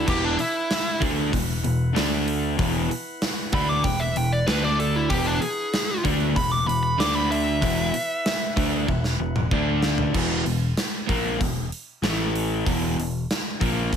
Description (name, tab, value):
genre	hard rock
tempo	95 BPM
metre	4/4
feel	straight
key	unclear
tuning	A4 = 440 Hz
part	dark smooth lead guitar	melody	0.0-9.2 s	D4 to D6	-26 LUFS	right 1 dB	overdrive, digital delay
part	tonewheel organ	sustained chords	0.0-10.1 s	D4 to F#5	-37 LUFS	equal	stopped rotary speaker, plate reverb
part	crunchy overdriven guitar	riff	0.0-14.0 s	E2 to D4	-27 LUFS	left 10 dB	none
part	overdriven semi-hollow guitar	riff	0.0-14.0 s	E2 to D4	-28 LUFS	right 11 dB	none
part	modern bright picked electric bass	bass	0.0-14.0 s	E1 to D2	-28 LUFS	equal	none
part	gated 80s drum kit	drums	0.1-14.0 s	crash cymbal, hi-hat, kick drum, snare drum, toms	-27 LUFS	equal	none
room	moderate studio reverb, RT60 0.7 s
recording	none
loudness	-21 LUFS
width	side -8 dB against mid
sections	0.0-10.1 A section; 10.1-14.0 B section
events	lead electric guitar solo 0.0-10.1; drum fill 8.9-10.1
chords	0.1 E5; 2.0 D5; 2.6 E5; 4.5 D5; 5.1 E; 7.0 D5; 7.6 E5; 9.5 D5; 10.1 E5; 12.0 A5; 12.7 E5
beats	| 0.08 0.70 1.33 1.96 | 2.59 3.22 3.85 4.48 | 5.11 5.74 6.37 6.99 | 7.62 8.25 8.88 9.51 | 10.14 10.77 11.40 12.03 | 12.66 13.29 13.91